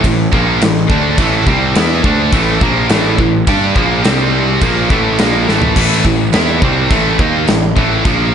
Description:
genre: heavy metal.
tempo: 105 BPM.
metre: 4/4.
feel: straight.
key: A phrygian.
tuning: A4 = 439 Hz.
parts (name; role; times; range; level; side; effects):
scooped high-gain guitar; riff; 0.0-8.3 s; A2 to G4; -16 LUFS; left 12 dB; distortion.
tight distorted guitar; riff; 0.0-8.3 s; A2 to G4; -16 LUFS; right 13 dB; distortion.
fuzz picked electric bass; bass; 0.0-8.3 s; A1 to G2; -16 LUFS; equal; overdrive.
big rock drum kit; drums; 0.0-8.2 s; china cymbal, crash cymbal, kick drum, snare drum, toms; -15 LUFS; equal; none.
room: little or no reverb.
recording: nothing above 10.4 kHz.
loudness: -10 LUFS.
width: side -8 dB against mid.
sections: 0.0-5.8 A section; 5.8-8.3 B section.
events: drum fill 5.5.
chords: 0.0 Am; 4.0 C5; 4.6 A5; 5.8 Am.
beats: 0.04 0.61 | 1.19 1.76 2.33 2.90 | 3.47 4.04 4.61 5.18 | 5.76 6.33 6.90 7.47 | 8.05.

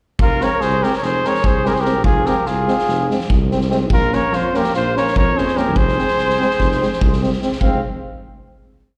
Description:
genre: balkan folk, Balkan brass band.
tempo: 291 BPM (eighths).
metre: 9/8.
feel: straight.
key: F minor.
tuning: A4 = 440 Hz.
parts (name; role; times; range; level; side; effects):
warm trumpet; melody; 0.2-7.8 s; Ab4 to F5; -22 LUFS; equal; slapback echo.
mellow trumpet; second line; 0.2-7.8 s; C4 to Bb4; -26 LUFS; equal; slapback echo.
mellow tuba; bass; 0.2-7.8 s; F1 to F2; -24 LUFS; equal; none.
loose indie drum kit; percussion; 0.2-7.8 s; kick drum, snare drum; -23 LUFS; equal; none.
clear trombone; accompaniment; 0.4-7.8 s; C4 to Db4; -26 LUFS; equal; slapback echo.
mellow euphonium; accompaniment; 0.4-7.8 s; Ab3 to Bb3; -29 LUFS; equal; slapback echo.
room: small room ambience.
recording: live gig heard through the venue's PA, recital hall reverb.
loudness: -17 LUFS.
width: mono.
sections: 0.2-7.6 A section; 7.6-9.0 final chord.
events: none.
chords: 0.2 Fm; 3.9 Bbm; 5.8 Fm.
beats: | 0.19 0.40 0.60 0.81 1.02 1.22 1.43 1.63 1.84 | 2.05 2.25 2.46 2.67 2.87 3.08 3.29 3.49 3.70 | 3.91 4.11 4.32 4.53 4.73 4.94 5.15 5.35 5.56 | 5.76 5.97 6.17 6.38 6.59 6.79 7.00 7.20 7.40 | 7.61 7.81.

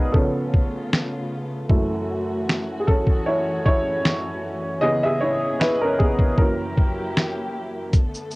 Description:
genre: lo-fi hip hop.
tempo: 77 BPM.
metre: 4/4.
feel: swing 56% on 16ths.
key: unclear.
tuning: A4 = 440 Hz.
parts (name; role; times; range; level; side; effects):
warm upright piano; accompaniment; 0.0-8.0 s; F#2 to F5; -22 LUFS; equal; low-pass filter, cassette tape.
dark studio string section; sustained chords; 0.0-8.4 s; B2 to A#4; -31 LUFS; left 1 dB; low-pass filter, cassette tape.
lo-fi sampler-style drum kit; drums; 0.1-8.4 s; finger snaps, hi-hat, kick drum, shaker, snare drum; -19 LUFS; equal; cassette tape.
room: light reverb.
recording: home recording on cassette.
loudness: -19 LUFS.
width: side -23 dB against mid.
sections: 0.0-8.4 A section.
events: break 0.0-7.9; upright piano solo 0.0-8.4.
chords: 0.1 C#aug7; 1.7 F#m7; 4.8 C#m7; 6.4 F#7b9.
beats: 0.14 0.92 | 1.70 2.48 3.26 4.04 | 4.82 5.60 6.38 7.15 | 7.93.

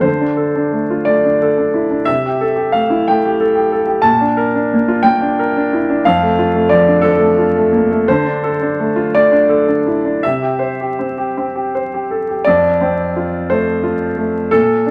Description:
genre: neoclassical minimalist piano.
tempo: 53-62 BPM (dotted quarters).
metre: 6/8.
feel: rubato.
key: F major.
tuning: A4 = 440 Hz.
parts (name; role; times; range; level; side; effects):
warm grand piano; solo; 0.0-14.9 s; F2 to A5; -15 LUFS; equal; none.
room: wet studio reverb, RT60 0.6 s.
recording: vinyl crackle.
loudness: -15 LUFS.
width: mono.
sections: 0.0-12.4 A section; 12.4-14.9 B section.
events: none.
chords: 0.0 Dm7; 2.1 C6; 4.1 Bb; 6.1 F6; 8.1 Dm7; 10.2 C; 12.4 F.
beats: | 0.04 1.07 | 2.08 3.07 | 4.05 5.06 | 6.05 7.05 | 8.07 9.11 | 10.22 11.34 | 12.45 13.50 | 14.54.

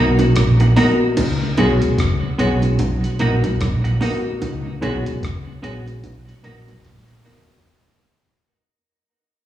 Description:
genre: roots reggae.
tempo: 74 BPM.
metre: 4/4.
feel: swing 59% on 16ths.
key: unclear.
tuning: A4 = 440 Hz.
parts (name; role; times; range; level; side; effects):
semi-hollow electric guitar; accompaniment; 0.0-7.4 s; Ab3 to Gb4; -25 LUFS; right 3 dB; spring reverb, dub echo, plate reverb, slapback echo.
tonewheel organ; accompaniment; 0.0-7.4 s; Cb3 to Eb4; -26 LUFS; left 2 dB; dub echo, plate reverb, slapback echo.
dark upright piano; stabs; 0.0-7.4 s; Cb4 to Bb4; -22 LUFS; left 2 dB; plate reverb, slapback echo.
vintage muted fingered electric bass; bass; 0.0-7.2 s; Bb1 to Db2; -18 LUFS; right 1 dB; none.
dusty soul sampler-style drum kit; drums; 0.2-7.7 s; crash cymbal, hi-hat, kick drum, rim click, snare drum, toms; -26 LUFS; left 1 dB; slapback echo.
bongos; percussion; 0.2-7.5 s; none; -24 LUFS; right 4 dB; slapback echo.
room: moderate club reverb, RT60 0.5 s.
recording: live gig heard through the venue's PA, recital hall reverb, small room ambience.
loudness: -15 LUFS.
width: side -12 dB against mid.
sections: 0.0-1.2 A section; 1.2-7.7 B section.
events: break 0.0-1.2; fade-out 1.2-7.7; drum fill 6.8-7.7.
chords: 0.0 Cbmaj7; 1.2 Db7sus4; 2.8 Cbmaj7; 4.4 Db7sus4; 6.0 Cbmaj7.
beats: 0.36 | 1.17 1.99 2.80 3.61 | 4.42 5.23 6.04 6.85.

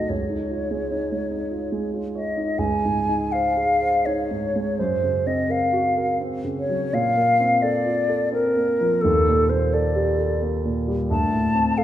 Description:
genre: classical, impressionist duo for flute and grand piano.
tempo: 66-89 BPM.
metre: 3/4.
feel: rubato.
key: Db major.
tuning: A4 = 442 Hz.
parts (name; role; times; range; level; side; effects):
mellow hollow silver concert flute; melody; 0.0-11.8 s; A4 to A5; -22 LUFS; left 1 dB; none.
dark concert grand piano; accompaniment; 0.0-11.8 s; Cb2 to Db5; -23 LUFS; right 1 dB; none.
room: wet recital hall reverb, RT60 1.7 s.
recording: minimal, uncompressed stereo recording.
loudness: -20 LUFS.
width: side -12 dB against mid.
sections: 0.0-2.6 A section; 2.6-11.8 B section.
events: none.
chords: 0.1 Dbadd9; 2.6 Dbmaj9; 4.8 Gbmaj7#11; 6.9 Bbmaj9; 9.0 Ebmaj7#11; 11.1 D7(no3).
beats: | 0.10 0.92 1.71 | 2.57 3.32 4.05 | 4.78 5.49 6.21 | 6.92 7.62 8.32 | 9.04 9.73 10.42 | 11.10 11.78.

